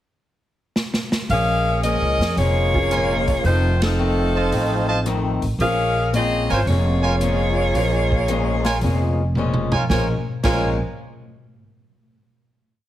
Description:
jazz, big band swing; 112 BPM; 4/4; swing 69% on 8ths; Bb minor; A4 = 438 Hz
swinging big-band drum kit; drums; 0.8-10.6 s; crash cymbal, hi-hat, kick drum, ride cymbal, rim click, snare drum, toms; -26 LUFS; equal
clear saxophone section; melody; 1.3-10.8 s; F3 to F5; -22 LUFS; left 1 dB
picked swing-style acoustic guitar; accompaniment; 1.3-10.7 s; F2 to Db4; -27 LUFS; left 4 dB
upright bass; bass; 1.3-10.8 s; F1 to F2; -21 LUFS; right 1 dB
dark baby grand piano; accompaniment; 2.7-10.8 s; Bb3 to Db5; -29 LUFS; right 1 dB
clear trumpet section; stabs; 2.9-10.7 s; F4 to A5; -25 LUFS; right 2 dB
light reverb; heavily compressed radio sound, multiband compression; -18 LUFS; side -13 dB against mid
0.0-1.3 pickup bar; 1.3-9.9 A section; 9.9-12.0 final chord
drum fill 0.8-1.3, 9.4-9.9; band accent 3.7
0.0 N.C.; 1.3 Bbm7; 3.4 F7; 5.6 Bbm7
0.22 0.75 | 1.29 1.83 2.36 2.90 | 3.44 3.98 4.51 5.05 | 5.59 6.13 6.67 7.21 | 7.74 8.28 8.82 9.36 | 9.90 10.44

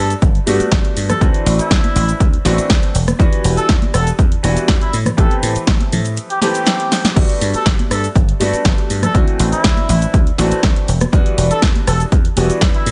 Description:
filtered disco house; 121 BPM; 4/4; straight; A4 = 440 Hz
muted trumpet section; melody; 0.0-12.9 s; E4 to A4; -25 LUFS; equal; sidechain pumping
bright concert grand piano; accompaniment; 0.0-12.9 s; E3 to G4; -24 LUFS; equal; phaser, sidechain pumping
dry thumbed slap bass; bass; 0.0-12.9 s; E1 to A2; -20 LUFS; equal; sidechain pumping
punchy analog drum machine; drums; 0.1-12.9 s; crash cymbal, hi-hat, rim click, shaker, snare drum; -22 LUFS; equal; sidechain pumping on hats, sidechain pumping on perc, sidechain pumping on cymbals
maracas and congas; percussion; 0.1-12.8 s; -26 LUFS; equal; sidechain pumping on perc
electronic kick drum; drums; 0.2-12.7 s; -17 LUFS; equal
little or no reverb; nothing above 10.5 kHz; -15 LUFS; mono
0.0-12.9 A section
drum fill 6.9
0.0 Gmaj9; 1.2 D7; 2.9 Em7; 4.9 Am9; 7.2 Gmaj9; 9.1 D7; 10.9 Em7
0.22 0.72 | 1.21 1.71 2.21 2.70 | 3.20 3.69 4.19 4.68 | 5.18 5.68 6.17 6.67 | 7.16 7.66 8.15 8.65 | 9.15 9.64 10.14 10.63 | 11.13 11.63 12.12 12.62

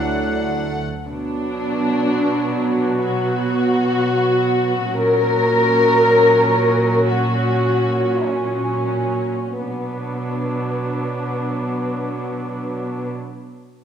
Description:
cinematic, emotional film score for orchestra; free time; B minor; A4 = 440 Hz
warm symphonic violin section; melody; 0.0-0.8 s; F#5; -30 LUFS; left 6 dB
dark studio violin section; second line; 0.0-13.1 s; B3 to F#5; -19 LUFS; left 2 dB
mellow hollow silver concert flute; second line; 0.0-0.5 s; D5; -36 LUFS; left 2 dB
warm oboe; second line; 0.0-0.6 s; F#5; -32 LUFS; right 1 dB
dark studio viola section; accompaniment; 0.0-13.1 s; F#3 to D4; -23 LUFS; right 2 dB
mellow French horn section; sustained chords; 0.0-0.7 s; F#3 to E4; -27 LUFS; right 2 dB
dark studio double bass section; bass; 0.0-0.8 s; D2; -31 LUFS; right 3 dB
warm studio cello section; bass; 0.0-13.1 s; A#2 to D4; -24 LUFS; right 2 dB
moderate scoring stage reverb, RT60 1.6 s; -17 LUFS; side -8 dB against mid
0.0-1.1 A section; 1.1-9.6 B section; 9.6-13.8 C section
slowing down 0.0-9.6
0.0 Dadd9; 1.1 Bm; 4.9 F#/A#; 9.6 Bm
free time

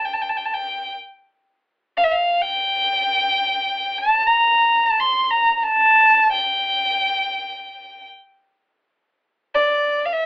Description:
Turkish makam ensemble; free time; A4 = 440 Hz
warm violin; solo; 0.0-10.3 s; D5 to C6; -16 LUFS; equal
moderate studio reverb, RT60 0.5 s; band playing live in one room, telephone sound; -16 LUFS; side -21 dB against mid
0.0-10.3 A section
free time

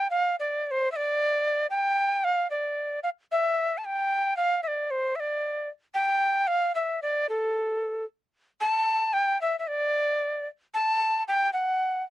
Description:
andean folk, Andean ensemble; 113 BPM; 2/4; straight; A4 = 442 Hz
breathy bright quena; solo; 0.0-12.0 s; A4 to A5; -24 LUFS; equal
little or no reverb; dry, close 1970s-style studio recording, lossy compression artefacts; -24 LUFS; side -14 dB against mid
0.1-8.6 A section; 8.6-12.1 B section
| 0.12 0.65 | 1.18 1.71 | 2.24 2.77 | 3.30 3.83 | 4.36 4.89 | 5.42 5.96 | 6.49 7.02 | 7.55 8.08 | 8.61 9.14 | 9.68 10.21 | 10.74 11.27 | 11.80

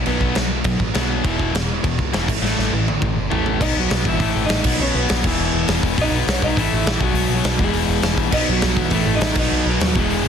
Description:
punk rock; 203 BPM; 4/4; straight; B mixolydian; A4 = 436 Hz
sludgy distorted guitar; riff; 0.0-10.3 s; E2 to B3; -27 LUFS; right 1 dB; overdrive
overdriven picked electric bass; bass; 0.0-10.3 s; E1 to D#2; -24 LUFS; equal
crunchy overdriven guitar; riff; 0.1-3.6, 8.3-10.3 s; E2 to B3; -26 LUFS; right 11 dB
tight distorted guitar; riff; 0.1-10.3 s; E2 to B3; -24 LUFS; left 11 dB; distortion
big rock drum kit; drums; 0.1-10.2 s; crash cymbal, hi-hat, kick drum, snare drum, toms; -21 LUFS; equal; soft clipping on snare
lightly driven lead guitar; melody; 3.6-10.3 s; E3 to D#5; -23 LUFS; right 2 dB
light reverb; dense, heavily limited modern master; -16 LUFS; side -7 dB against mid
0.0-3.6 A section; 3.6-10.3 B section
drum fill 2.4-3.6
0.0 B5; 1.3 E5; 2.3 A5; 3.6 B; 4.2 A5; 4.6 B; 5.2 E5; 6.0 B; 6.6 A5; 7.0 B5; 7.6 E; 8.3 B; 8.9 A5; 9.4 B
| 0.07 0.36 0.66 0.96 | 1.25 1.55 1.84 2.14 | 2.43 2.73 3.02 3.32 | 3.61 3.91 4.20 4.50 | 4.79 5.09 5.38 5.68 | 5.97 6.27 6.56 6.86 | 7.15 7.45 7.74 8.04 | 8.33 8.63 8.92 9.22 | 9.51 9.81 10.11

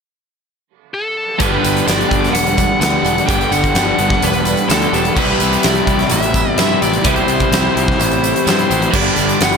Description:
rock, shoegaze and dream pop; 127 BPM; 4/4; straight; G major; A4 = 439 Hz
bluesy overdriven lead guitar; melody; 0.9-9.6 s; A4 to G5; -20 LUFS; left 1 dB; distortion, analog delay
dark analog pad; sustained chords; 1.4-9.6 s; G4 to B5; -26 LUFS; equal; chorus
overdriven electric guitar; riff; 1.4-9.6 s; G2 to G3; -21 LUFS; right 1 dB
overdriven semi-hollow guitar; riff; 1.4-9.6 s; G2 to G4; -20 LUFS; left 11 dB; analog chorus
twangy electric guitar; riff; 1.4-9.6 s; G2 to E4; -21 LUFS; right 13 dB; reverse reverb
fuzz picked electric bass; bass; 1.4-9.6 s; E1 to G2; -21 LUFS; equal; overdrive
huge arena drum kit; drums; 1.4-9.6 s; crash cymbal, hi-hat, kick drum, snare drum; -18 LUFS; equal
tambourine; percussion; 1.4-9.5 s; -29 LUFS; right 18 dB
light reverb, small room ambience; -12 LUFS; side -5 dB against mid
0.0-1.4 A section; 1.4-9.6 B section
0.0 N.C.; 1.4 Gmaj7; 5.2 Cmaj7; 8.9 Gmaj7
0.46 0.93 | 1.40 1.87 2.34 2.81 | 3.28 3.75 4.23 4.70 | 5.17 5.64 6.11 6.58 | 7.05 7.52 7.99 8.46 | 8.93 9.40

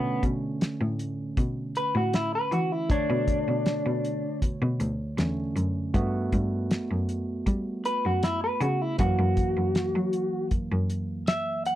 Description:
straight-eighth soul blues; 79 BPM; 4/4; straight; B minor; A4 = 440 Hz
electric guitar through a small old amp; melody; 0.0-11.8 s; B3 to F#5; -27 LUFS; equal
barky tine electric piano; accompaniment; 0.0-11.8 s; D3 to C#5; -32 LUFS; right 2 dB
bright cello; bass; 0.0-11.8 s; D2 to G3; -29 LUFS; equal
cloth-damped thuddy drum kit; drums; 0.2-11.8 s; hi-hat, kick drum, snare drum; -27 LUFS; equal
little or no reverb; dry, close 1970s-style studio recording; -25 LUFS; side -13 dB against mid
0.0-11.8 A section
0.0 Bm7; 5.9 Gmaj7; 9.0 F#7
0.61 1.37 2.13 | 2.89 3.66 4.42 5.18 | 5.94 6.70 7.46 8.22 | 8.99 9.75 10.51 11.27

